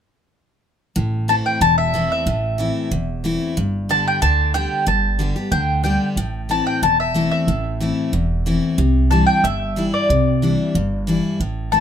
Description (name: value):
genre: bluegrass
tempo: 184 BPM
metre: 4/4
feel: straight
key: A minor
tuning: A4 = 440 Hz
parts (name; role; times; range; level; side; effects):
- picked steel-string acoustic guitar; accompaniment; 1.0-11.8 s; E2 to G4; -21 LUFS; left 2 dB; none
- upright bass; bass; 1.0-11.8 s; E1 to D2; -21 LUFS; right 2 dB; none
- mandolin; melody; 1.3-11.8 s; D5 to A5; -19 LUFS; left 1 dB; plate reverb
room: light reverb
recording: close, detailed microphones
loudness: -16 LUFS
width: side -8 dB against mid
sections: 1.0-11.8 A section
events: none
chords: 1.0 Am; 3.6 G; 6.2 Am; 8.8 Cadd9